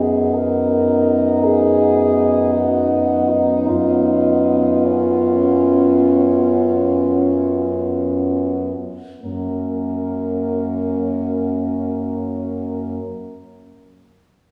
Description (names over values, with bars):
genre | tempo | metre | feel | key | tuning
classical, lyrical piece for horn quartet | free time | none | none | F# major | A4 = 439 Hz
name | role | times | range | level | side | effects
warm French horn | melody | 0.0-13.0 s | D#4 to A#4 | -23 LUFS | equal | none
warm French horn | second line | 0.0-13.0 s | C#4 to D#4 | -25 LUFS | equal | none
dark French horn | accompaniment | 0.0-13.0 s | A#3 to B3 | -24 LUFS | equal | none
warm French horn | bass | 0.0-13.0 s | F#2 | -23 LUFS | equal | none
room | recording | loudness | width
wet concert hall reverb, RT60 2.1 s | heard from further back in the room, small room ambience | -18 LUFS | mono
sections
0.0-9.2 A section; 9.2-14.5 B section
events
slowing down 0.7-9.2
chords
0.0 B/F#; 9.2 F#